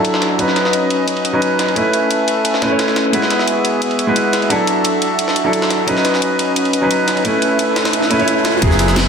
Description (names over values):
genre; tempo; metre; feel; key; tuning
liquid drum and bass; 175 BPM; 4/4; straight; unclear; A4 = 440 Hz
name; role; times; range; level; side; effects
clear baby grand piano; accompaniment; 0.0-9.1 s; F#3 to C#5; -16 LUFS; equal; low-pass filter, dub echo
warm analog pad; sustained chords; 0.0-9.1 s; B3 to B5; -20 LUFS; equal; chorus, sidechain pumping
garage drum kit; drums; 0.0-9.0 s; hi-hat, snare drum; -21 LUFS; left 1 dB; low-pass filter on snare, studio reverb, low-pass filter on hats, low-pass filter on cymbals
jungle sampler-style drum kit; drums; 0.0-9.0 s; ride cymbal, snare drum; -22 LUFS; right 1 dB; high-pass filter on snare, low-pass filter on snare, studio reverb, high-pass filter on cymbals, low-pass filter on cymbals, high-pass filter on room, low-pass filter on room
riser; sound effects; 7.0-8.6 s; none; -22 LUFS; equal; none
swelling detuned saw bass; bass; 8.6-9.1 s; F#1; -16 LUFS; equal; none
electronic kick drum; drums; 8.6-8.7 s; none; -16 LUFS; equal; studio reverb
room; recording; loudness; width
wet plate reverb, RT60 1.1 s; dense, heavily limited modern master; -13 LUFS; side -6 dB against mid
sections
0.0-8.6 A section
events
filter sweep on grand piano 0.0-8.6; riser 7.0-8.6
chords
0.4 C#9sus4; 1.8 B9sus4; 3.1 F#9sus4; 4.5 E9sus4; 5.9 C#9sus4; 7.2 B9sus4